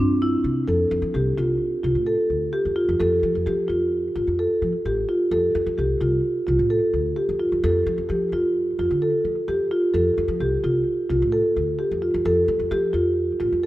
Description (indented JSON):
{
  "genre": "contemporary instrumental, chamber music in an uneven meter",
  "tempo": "130 BPM",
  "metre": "5/4",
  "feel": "straight",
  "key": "F major",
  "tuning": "A4 = 442 Hz",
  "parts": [
    { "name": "marimba with medium mallets", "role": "arpeggios", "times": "0.0-13.7 s", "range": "D4 to A4", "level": "-20 LUFS", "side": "equal", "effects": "none" },
    { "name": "upright bass", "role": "bass", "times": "0.0-13.7 s", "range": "A1 to F3", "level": "-26 LUFS", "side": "equal", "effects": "none" }
  ],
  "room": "light reverb",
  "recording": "none",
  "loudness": "-20 LUFS",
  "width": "side -16 dB against mid",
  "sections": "0.7-13.7 A section",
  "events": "none",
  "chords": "0.0 C5; 0.7 F; 3.0 Fadd9; 5.3 F; 7.6 Fadd9; 9.9 F; 12.2 Fadd9",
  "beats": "0.22 | 0.68 1.14 1.61 2.07 2.54 | 3.00 3.46 3.92 4.39 4.85 | 5.31 5.78 6.24 6.70 7.17 | 7.63 8.09 8.55 9.02 9.48 | 9.94 10.40 10.86 11.33 11.79 | 12.25 12.71 13.17 13.63"
}